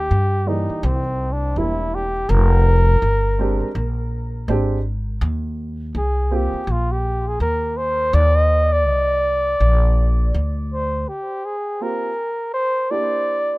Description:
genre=hip hop, jazz-hop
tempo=82 BPM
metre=4/4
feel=swing 60% on 16ths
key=Eb major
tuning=A4 = 438 Hz
part: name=breathy flugelhorn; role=melody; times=0.0-13.6 s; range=C4 to Eb5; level=-21 LUFS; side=equal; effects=analog delay
part: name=upright bass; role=bass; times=0.0-11.0 s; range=E1 to G2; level=-19 LUFS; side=equal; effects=none
part: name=dark upright piano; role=accompaniment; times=0.5-6.6, 11.8-13.6 s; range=Fb3 to D5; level=-25 LUFS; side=right 3 dB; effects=none
room=little or no reverb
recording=rough home demo mix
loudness=-17 LUFS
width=side -22 dB against mid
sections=0.0-11.1 A section; 11.1-13.6 B section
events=flugelhorn solo 0.0-11.1; break 11.1-13.6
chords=0.0 Eb; 0.8 C7; 2.3 Fmadd9; 3.8 Bb13; 5.2 Eb5; 11.1 Abmaj13; 12.5 C9

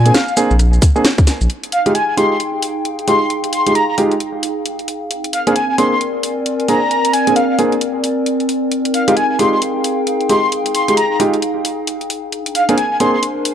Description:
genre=UK garage, two-step garage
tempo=133 BPM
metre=4/4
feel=swing 61% on 16ths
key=F dorian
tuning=A4 = 443 Hz
part: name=breathy flute-like synth lead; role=melody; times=0.0-13.2 s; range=F5 to C6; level=-18 LUFS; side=left 1 dB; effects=analog chorus, tape echo
part: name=saturated sub bass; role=bass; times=0.0-1.5 s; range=Bb1 to Bb2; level=-11 LUFS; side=equal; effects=tube saturation
part: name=dark concert grand piano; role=stabs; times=0.1-13.1 s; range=Ab3 to Ab4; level=-18 LUFS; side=right 1 dB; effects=low-pass filter, tape echo
part: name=garage drum kit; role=drums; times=0.1-13.5 s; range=hi-hat, rim click, shaker, snare drum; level=-19 LUFS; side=left 1 dB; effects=none
part: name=electronic kick drum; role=drums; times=0.8-1.3 s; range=none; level=-11 LUFS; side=equal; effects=none
part: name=warbly tape-like pad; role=texture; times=1.5-13.5 s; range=C4 to Ab5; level=-19 LUFS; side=equal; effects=chorus, built-in reverb, sidechain pumping
room=light reverb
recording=dry, gritty hardware recording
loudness=-13 LUFS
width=side -9 dB against mid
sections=0.0-1.5 A section; 1.5-13.5 B section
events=band accent 1.0; filter sweep on grand piano 1.5-13.5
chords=0.0 Bb9; 1.5 Fm9; 5.1 Bb9; 8.7 Fm9; 12.3 Bb9

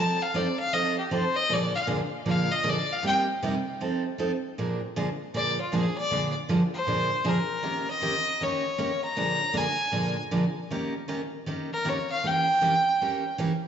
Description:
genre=country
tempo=156 BPM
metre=4/4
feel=swing 65% on 8ths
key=Bb mixolydian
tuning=A4 = 440 Hz
part: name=clear fiddle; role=melody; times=0.0-13.4 s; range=F4 to Bb5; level=-26 LUFS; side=left 1 dB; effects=slapback echo
part: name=picked steel-string acoustic guitar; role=accompaniment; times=0.0-13.5 s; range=Bb2 to Bb4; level=-28 LUFS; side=right 2 dB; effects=slapback echo
room=moderate lush hall reverb, RT60 3.2 s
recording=live gig heard through the venue's PA, club reverb, nothing above 7.8 kHz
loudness=-24 LUFS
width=side -8 dB against mid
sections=0.0-4.6 A section; 4.6-13.7 A section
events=fiddle solo 0.0-4.6, 4.6-13.7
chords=0.0 F7; 1.5 Bb7; 3.0 Cm7; 3.8 F7; 4.6 Bb7; 7.6 Eb7; 9.2 Bb7; 10.7 Eb7; 12.2 Edim7

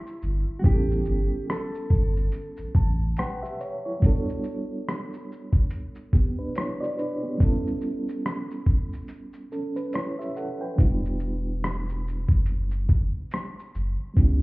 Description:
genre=lo-fi hip hop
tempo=71 BPM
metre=4/4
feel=swing 58% on 16ths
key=E dorian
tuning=A4 = 444 Hz
part: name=mellow electric guitar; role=melody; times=0.0-2.7 s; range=E4 to A4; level=-34 LUFS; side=right 1 dB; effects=low-pass filter, tape echo
part: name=reed electric piano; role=accompaniment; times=0.0-14.4 s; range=F#3 to A5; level=-31 LUFS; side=right 1 dB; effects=fast tremolo, cassette tape, low-pass filter
part: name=lo-fi sampler-style drum kit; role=drums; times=0.1-14.4 s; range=hi-hat, kick drum, rim click, shaker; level=-21 LUFS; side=equal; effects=none
part: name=warm sub bass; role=bass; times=0.2-3.1, 10.8-14.4 s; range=E1 to C#2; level=-25 LUFS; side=equal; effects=none
room=digital ambience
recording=heard muffled through a wall, club reverb, vinyl crackle, EQ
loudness=-24 LUFS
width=side -22 dB against mid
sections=0.0-14.4 A section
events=reed electric piano fill 2.3-4.0; break 9.1-10.8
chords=0.0 Em9; 0.6 A7; 4.0 Gmaj7; 7.4 A7; 10.8 Em9

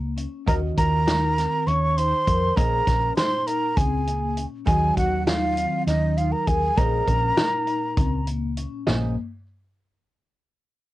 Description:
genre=progressive instrumental, band music in an uneven meter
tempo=200 BPM (eighths)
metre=7/8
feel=straight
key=Bb minor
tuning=A4 = 440 Hz
part: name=vintage hollow-body jazz guitar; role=accompaniment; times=0.0-9.2 s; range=Bb2 to Eb5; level=-32 LUFS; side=right 4 dB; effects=none
part: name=vibraphone with soft mallets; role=arpeggios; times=0.0-9.2 s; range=Bb3 to Bb4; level=-31 LUFS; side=left 6 dB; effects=none
part: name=hollow-body short-scale fingered electric bass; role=bass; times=0.0-9.2 s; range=Bb1 to F2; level=-25 LUFS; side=equal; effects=none
part: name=vintage drum kit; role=drums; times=0.2-9.0 s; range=hi-hat, kick drum, snare drum, toms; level=-25 LUFS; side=equal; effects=cassette tape
part: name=breathy jazz flute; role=melody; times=0.5-8.3 s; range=Eb5 to Db6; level=-24 LUFS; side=equal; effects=cassette tape
part: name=breathy flugelhorn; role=second line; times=0.5-8.3 s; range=Eb4 to Db5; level=-31 LUFS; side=right 5 dB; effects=none
room=moderate booth ambience, RT60 0.2 s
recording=home recording on cassette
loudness=-20 LUFS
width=side -16 dB against mid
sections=0.0-8.9 A section; 8.9-10.9 B section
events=none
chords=0.5 Ebm7; 2.6 Bbm11; 4.7 Ebm7; 6.8 Bbm11

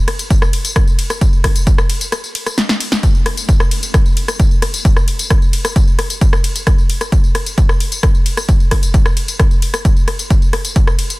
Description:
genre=techno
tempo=132 BPM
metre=4/4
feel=straight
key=none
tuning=none
part: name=punchy analog drum machine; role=drums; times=0.1-11.2 s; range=hi-hat, ride cymbal, rim click, snare drum, tambourine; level=-19 LUFS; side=left 1 dB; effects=overdrive, sidechain pumping on hats, soft clipping on snare, sidechain pumping on cymbals, sidechain pumping on perc
part: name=electronic kick drum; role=drums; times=0.3-10.9 s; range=none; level=-12 LUFS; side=equal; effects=none
room=digital ambience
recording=dense, heavily limited modern master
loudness=-12 LUFS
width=side -22 dB against mid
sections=0.0-11.2 A section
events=break 2.1-3.0; drum fill 2.6-3.0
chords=none

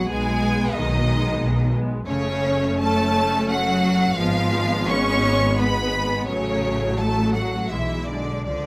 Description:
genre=classical, slow romantic movement for string orchestra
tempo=76-93 BPM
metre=3/4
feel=rubato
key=F# minor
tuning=A4 = 439 Hz
part: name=clear studio violin section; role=melody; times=0.0-8.7 s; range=C#5 to C#6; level=-28 LUFS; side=equal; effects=none
part: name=rich studio violin section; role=second line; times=0.0-8.7 s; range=C#4 to C#5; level=-32 LUFS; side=equal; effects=none
part: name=warm studio viola section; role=accompaniment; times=0.0-8.7 s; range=E#3 to C#4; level=-29 LUFS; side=equal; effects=none
part: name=rich studio cello section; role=bass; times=0.0-8.7 s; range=C#3 to C#4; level=-28 LUFS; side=equal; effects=none
part: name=clear studio double bass section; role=bass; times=0.1-8.7 s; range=F#1 to C#2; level=-27 LUFS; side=equal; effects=none
room=light reverb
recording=close, detailed microphones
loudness=-21 LUFS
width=mono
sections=0.0-8.7 A section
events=none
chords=0.1 G#m/B; 2.1 F#m; 4.2 Fdim/Ab; 6.3 F#m/A; 7.7 G#dim/B

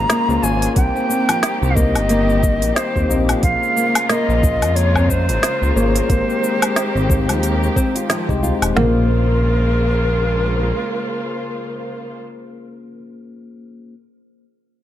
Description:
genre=organic downtempo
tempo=90 BPM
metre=4/4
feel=swing 58% on 16ths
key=Bb dorian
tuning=A4 = 440 Hz
part: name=breathy bright ney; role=melody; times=0.0-12.2 s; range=Bb4 to Bb5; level=-22 LUFS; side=equal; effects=ping-pong delay
part: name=tine electric piano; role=accompaniment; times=0.0-14.0 s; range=Ab3 to F5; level=-25 LUFS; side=left 4 dB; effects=sidechain pumping, ping-pong delay
part: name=muted studio string section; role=sustained chords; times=0.0-12.2 s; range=Db3 to C5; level=-26 LUFS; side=right 1 dB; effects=sidechain pumping
part: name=smooth gliding synth bass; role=bass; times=0.0-10.7 s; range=Eb1 to F2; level=-19 LUFS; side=equal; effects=sidechain pumping
part: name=nylon-string guitar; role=arpeggios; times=0.1-9.1 s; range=F3 to F4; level=-23 LUFS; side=left 2 dB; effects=ping-pong delay
part: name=organic electronic drum kit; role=drums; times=0.1-8.7 s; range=cabasa, hi-hat, snare drum, woodblock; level=-22 LUFS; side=left 1 dB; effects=overdrive
part: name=organic electronic drum kit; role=drums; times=0.8-8.9 s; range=kick drum, snare drum, toms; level=-19 LUFS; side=equal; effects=overdrive
part: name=udu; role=percussion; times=1.8-8.6 s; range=none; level=-27 LUFS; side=equal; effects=none
room=light reverb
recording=none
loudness=-15 LUFS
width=side -12 dB against mid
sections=0.0-8.8 A section; 8.8-11.4 B section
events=none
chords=0.0 Bbm9; 0.8 Cm7; 3.4 Bbm9; 6.1 Abmaj7; 8.8 Bbm9

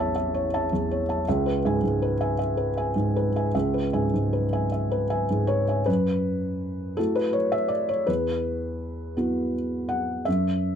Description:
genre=neoclassical minimalist piano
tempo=51-55 BPM (dotted quarters)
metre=6/8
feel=rubato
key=F# minor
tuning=A4 = 441 Hz
part: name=felt-muted upright piano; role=solo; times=0.0-10.8 s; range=A1 to A5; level=-23 LUFS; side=equal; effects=none
room=moderate booth ambience, RT60 0.2 s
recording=dark, warm production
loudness=-23 LUFS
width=side -8 dB against mid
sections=0.0-5.9 A section; 5.9-10.8 B section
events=none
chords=0.0 A; 1.3 C#m7; 5.9 F#m7; 8.1 Esus2

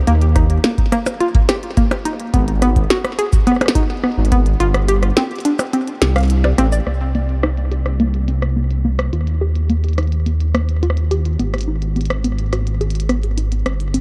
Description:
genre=IDM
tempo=106 BPM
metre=4/4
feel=straight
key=unclear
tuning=A4 = 442 Hz
part: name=dark detuned saw bass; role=bass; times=0.0-14.0 s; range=G1 to Eb2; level=-19 LUFS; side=equal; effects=none
part: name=warbly dusty pluck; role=arpeggios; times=0.1-14.0 s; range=Bb3 to F5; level=-23 LUFS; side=equal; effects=chorus, delay
part: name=glitchy drum kit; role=drums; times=0.1-14.0 s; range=hi-hat, percussion blips, rim click, shaker, snare drum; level=-24 LUFS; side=equal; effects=low-pass filter on hats, low-pass filter on snare, low-pass filter on perc, delay
part: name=electronic kick drum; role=drums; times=0.4-4.4 s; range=none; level=-18 LUFS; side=equal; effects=none
room=light reverb, digital ambience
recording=dark, warm production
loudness=-17 LUFS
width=mono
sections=0.0-6.9 A section; 6.9-14.0 B section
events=kick drops out 4.6-6.9; filter sweep on drum 6.9-14.0; filter sweep on synth arpeggio sound 6.9-14.0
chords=0.1 Eb5; 2.3 Abm; 4.6 Gsus4; 6.9 C7(no3); 9.1 Eb5; 11.4 Abm

